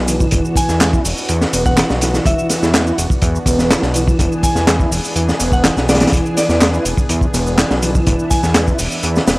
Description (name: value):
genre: breakbeat, breaks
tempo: 124 BPM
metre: 4/4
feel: straight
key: unclear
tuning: A4 = 441 Hz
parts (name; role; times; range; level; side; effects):
- lush unison pad; sustained chords; 0.0-9.4 s; E3 to G#4; -25 LUFS; equal; chorus, sidechain pumping
- fat analog bass; bass; 0.0-9.4 s; E1 to E2; -18 LUFS; equal; tube saturation
- mellow tonewheel organ; riff; 0.1-9.4 s; E3 to E4; -21 LUFS; equal; chorus vibrato, fast rotary speaker, overdrive, vintage 12-bit sampler grit, analog delay
- crunchy breakbeat drum kit; drums; 0.1-9.4 s; hi-hat, kick drum, snare drum; -16 LUFS; equal; none
- garage drum kit; drums; 0.1-9.4 s; handclaps, ride cymbal, shaker; -23 LUFS; equal; none
- soft synth bell; melody; 0.6-8.5 s; D5 to G#5; -22 LUFS; equal; chorus, AM radio sound, vintage 12-bit sampler grit, analog delay
room: studio reverb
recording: dry, gritty hardware recording, transformer saturation, vinyl crackle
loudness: -12 LUFS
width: side -22 dB against mid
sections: 0.0-9.4 A section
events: none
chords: 0.0 E7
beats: | 0.32 0.81 1.29 1.78 | 2.26 2.74 3.23 3.71 | 4.20 4.68 5.16 5.65 | 6.13 6.61 7.10 7.58 | 8.07 8.55 9.03